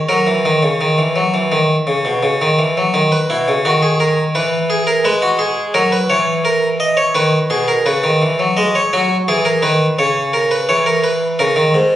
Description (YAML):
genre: classical, baroque-style two-part invention for harpsichord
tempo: 85 BPM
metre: 4/4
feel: straight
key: B major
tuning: A4 = 440 Hz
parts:
  - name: harpsichord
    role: solo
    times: 0.0-12.0 s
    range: G#2 to D#5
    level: -13 LUFS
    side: equal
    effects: none
room: moderate recital hall reverb, RT60 1.3 s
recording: recorded on a phone in the room, club reverb, nothing above 10.5 kHz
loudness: -13 LUFS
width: side -12 dB against mid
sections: 0.0-3.0 A section; 3.0-8.6 B section; 8.6-12.0 A section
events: none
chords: 0.1 F#; 3.0 B; 4.4 Eadd9; 5.8 F#; 7.2 B; 8.6 G#m7; 10.0 C#m; 11.4 G#sus24